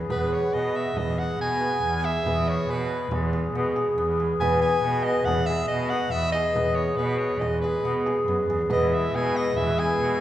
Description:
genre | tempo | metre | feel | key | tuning
contemporary instrumental, chamber music in an uneven meter | 140 BPM | 5/4 | straight | E major | A4 = 440 Hz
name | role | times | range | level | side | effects
hammered dulcimer | arpeggios | 0.0-10.2 s | G#3 to B4 | -26 LUFS | equal | none
rich cello | bass | 0.0-10.2 s | E2 to B2 | -28 LUFS | right 1 dB | none
breathy soprano saxophone | melody | 0.1-10.2 s | B4 to G#5 | -28 LUFS | equal | none
vibraphone with medium mallets | second line | 0.1-10.2 s | G#4 to B4 | -31 LUFS | equal | none
frame drum | percussion | 0.1-9.8 s | none | -36 LUFS | right 2 dB | none
warm woodwind section | sustained chords | 8.7-10.2 s | E3 to E4 | -34 LUFS | left 2 dB | none
room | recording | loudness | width
wet concert hall reverb, RT60 1.9 s | heard from further back in the room | -22 LUFS | side -12 dB against mid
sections
0.1-10.2 A section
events
none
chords
0.1 Emaj7

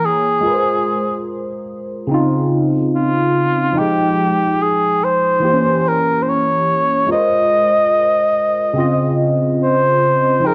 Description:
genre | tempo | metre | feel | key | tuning
R&B | 72 BPM | 4/4 | swing 57% on 16ths | unclear | A4 = 440 Hz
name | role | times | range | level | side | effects
dark cor anglais | melody | 0.0-10.5 s | F4 to Eb5 | -17 LUFS | equal | plate reverb
barky tine electric piano | accompaniment | 0.0-10.5 s | Db3 to G5 | -20 LUFS | equal | phaser
room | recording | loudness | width
wet studio reverb, RT60 0.7 s | worn, warbling old tape, cassette tape, warbly pitch drift, nothing above 11.0 kHz | -16 LUFS | mono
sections
0.0-10.5 A section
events
none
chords
0.4 Ab69; 2.1 Dbmaj9; 3.8 Fm9; 5.4 Edim7; 7.1 Ab69; 8.8 Dbmaj9

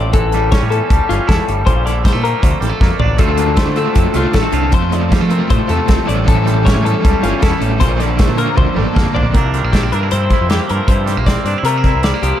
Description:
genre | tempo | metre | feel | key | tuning
math rock and midwest emo | 156 BPM | 4/4 | straight | unclear | A4 = 440 Hz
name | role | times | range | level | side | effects
twangy electric guitar | accompaniment | 0.0-12.4 s | D2 to F4 | -21 LUFS | right 6 dB | vibrato effect, tape echo
twelve-string electric guitar | arpeggios | 0.0-12.4 s | F4 to D5 | -19 LUFS | left 7 dB | spring reverb, tape echo
growling picked electric bass | bass | 0.0-12.3 s | G1 to F3 | -18 LUFS | equal | overdrive
loose indie drum kit | drums | 0.1-12.3 s | hi-hat, kick drum, snare drum, toms | -16 LUFS | equal | tape echo
overdriven semi-hollow guitar | riff | 3.2-9.3 s | A2 to F4 | -19 LUFS | right 1 dB | tremolo
room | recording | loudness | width
light reverb, small room ambience | echo-heavy mix | -12 LUFS | side -11 dB against mid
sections
0.0-9.3 A section; 9.3-12.4 B section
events
drum fill 2.8-3.2, 8.6-9.3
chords
0.0 A7; 1.7 Bbmaj7; 3.2 Dm7; 4.7 F; 6.1 A7; 7.8 Bbmaj7; 9.3 C9sus4

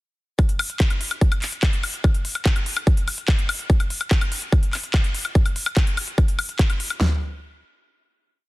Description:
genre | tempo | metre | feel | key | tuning
trance | 145 BPM | 4/4 | straight | none | none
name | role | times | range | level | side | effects
big-room dance drum kit | drums | 0.4-7.1 s | kick drum, snare drum, toms | -18 LUFS | equal | overdrive, studio reverb
drum and bass drum kit | drums | 0.4-7.0 s | handclaps, hi-hat, woodblock | -26 LUFS | left 2 dB | studio reverb
room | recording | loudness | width
digital ambience | dense, heavily limited modern master | -19 LUFS | side -20 dB against mid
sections
0.4-7.0 groove; 7.0-8.5 final hit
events
none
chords
none

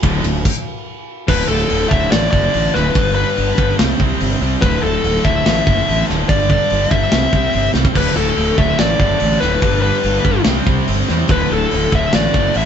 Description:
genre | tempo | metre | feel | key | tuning
hard rock | 144 BPM | 4/4 | straight | unclear | A4 = 439 Hz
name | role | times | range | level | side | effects
cranked stack guitar | riff | 0.0-12.7 s | D2 to C4 | -22 LUFS | right 9 dB | overdrive
cranked stack guitar | riff | 0.0-0.4, 7.9-12.7 s | D2 to C4 | -24 LUFS | left 1 dB | overdrive
scooped high-gain guitar | riff | 0.0-12.7 s | D2 to C4 | -24 LUFS | left 7 dB | distortion
fuzz fingered electric bass | bass | 0.0-12.7 s | D1 to E2 | -19 LUFS | equal | overdrive
tight metal drum kit | drums | 0.0-12.6 s | crash cymbal, hi-hat, kick drum, ride cymbal, snare drum | -18 LUFS | equal | none
dark smooth lead guitar | melody | 1.3-12.7 s | A4 to E5 | -18 LUFS | left 3 dB | overdrive
room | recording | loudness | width
moderate studio reverb, RT60 0.8 s | band playing live in one room, nothing above 7.9 kHz | -13 LUFS | side -8 dB against mid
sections
0.0-1.3 A section; 1.3-12.7 B section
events
stop 0.5-1.3; drum fill 7.7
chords
0.0 D5; 3.0 G; 3.8 C5; 4.6 D5; 6.3 G5; 7.1 C; 8.0 D5; 9.6 G; 10.5 C; 11.3 D5

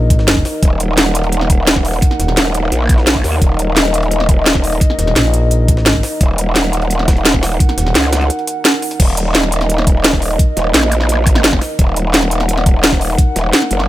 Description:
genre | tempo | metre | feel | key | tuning
dark technical drum and bass | 172 BPM | 4/4 | straight | Eb minor | A4 = 440 Hz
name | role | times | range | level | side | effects
dark analog pad | sustained chords | 0.0-13.9 s | Eb4 to Gb5 | -20 LUFS | equal | chorus, sidechain pumping
growling FM bass | bass | 0.0-2.4, 5.0-7.9 s | Eb1 to Bb1 | -14 LUFS | equal | none
drum and bass drum kit | drums | 0.1-13.9 s | crash cymbal, hi-hat, snare drum | -15 LUFS | equal | none
electronic kick drum | drums | 0.1-13.3 s | none | -13 LUFS | equal | none
jungle sampler-style drum kit | drums | 0.1-13.8 s | hi-hat, snare drum | -24 LUFS | equal | none
growl bass | bass | 0.6-13.9 s | Eb1 to Eb2 | -16 LUFS | equal | chorus, overdrive
room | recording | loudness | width
digital ambience | none | -11 LUFS | side -15 dB against mid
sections
0.0-9.0 A section; 9.0-13.9 A section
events
drop 0.0-9.0, 9.0-13.9; break 8.3-9.0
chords
0.0 Ebm

